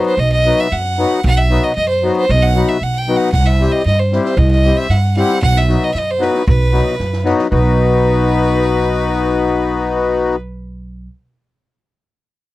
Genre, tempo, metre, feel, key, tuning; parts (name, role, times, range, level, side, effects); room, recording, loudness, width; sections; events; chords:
balkan folk, Balkan wedding band; 115 BPM; 2/4; straight; A4 = 441 Hz
bright violin; melody; 0.0-10.4 s; B4 to G5; -19 LUFS; right 1 dB
accordion; accompaniment; 0.0-10.4 s; F#3 to C5; -15 LUFS; left 4 dB
upright bass; bass; 0.2-11.1 s; B1 to G2; -16 LUFS; right 1 dB
compact cocktail drum kit; percussion; 3.3-7.8 s; kick drum, snare drum; -22 LUFS; equal
little or no reverb; -12 LUFS; side -17 dB against mid
0.0-7.5 A section; 7.5-9.6 B section
0.0 B; 3.3 C; 5.4 B